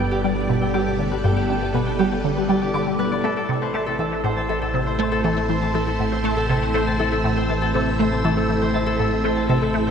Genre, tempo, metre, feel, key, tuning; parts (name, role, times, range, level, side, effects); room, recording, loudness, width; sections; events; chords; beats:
ambient, sequencer-driven space music; 120 BPM; 4/4; straight; A minor; A4 = 437 Hz
string machine, full ensemble; sustained chords; 0.0-9.9 s; G3 to E6; -24 LUFS; equal; ensemble chorus, shimmer reverb
Celtic harp; arpeggios; 0.0-9.9 s; G4 to D6; -25 LUFS; left 1 dB; auto-pan, ping-pong delay, shimmer reverb
resonant blip pluck; riff; 0.0-9.9 s; G2 to A3; -23 LUFS; equal; phaser, ensemble chorus, ping-pong delay, shimmer reverb
round analog bass; bass; 0.0-9.9 s; G1 to A1; -28 LUFS; equal; tube saturation
wet spring reverb, RT60 2.5 s; echo-heavy mix; -19 LUFS; side -7 dB against mid
0.0-9.9 A section
0.0 G; 3.2 Am
0.24 0.74 | 1.24 1.74 2.24 2.74 | 3.24 3.74 4.24 4.74 | 5.24 5.74 6.24 6.74 | 7.24 7.74 8.24 8.74 | 9.24 9.74